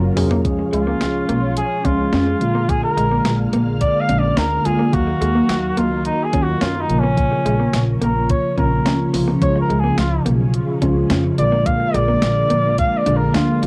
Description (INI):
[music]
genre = 1980s-style pop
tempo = 107 BPM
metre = 4/4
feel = straight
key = unclear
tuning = A4 = 440 Hz
[part]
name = mellow tine electric piano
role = accompaniment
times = 0.0-13.7 s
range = Db3 to F5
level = -24 LUFS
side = equal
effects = cassette tape
[part]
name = ensemble organ-string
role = sustained chords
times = 0.0-13.7 s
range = Db3 to F5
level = -28 LUFS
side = equal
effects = ensemble chorus, cassette tape
[part]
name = upright bass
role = bass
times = 0.0-13.7 s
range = Bb1 to Gb2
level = -25 LUFS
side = equal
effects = none
[part]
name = electric guitar through a small old amp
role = riff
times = 0.2-13.7 s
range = Ab3 to D4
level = -26 LUFS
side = equal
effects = subtle chorus, cassette tape, tape echo
[part]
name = clean 12-bit digital drum machine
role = drums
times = 0.2-13.7 s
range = hi-hat, kick drum, snare drum, toms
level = -24 LUFS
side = equal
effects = overdrive, cassette tape
[part]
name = clear flugelhorn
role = melody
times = 0.7-13.6 s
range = Db4 to F5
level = -24 LUFS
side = equal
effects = cassette tape
[sound]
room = wet booth ambience, RT60 0.2 s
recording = home recording on cassette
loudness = -18 LUFS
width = mono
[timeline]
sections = 0.4-13.7 A section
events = drum fill 0.0-0.4; flugelhorn solo 0.4-13.7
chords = 0.4 Db; 2.4 Bb7; 4.9 Ebmadd9; 6.9 Bbm; 9.4 Db; 11.4 Bb7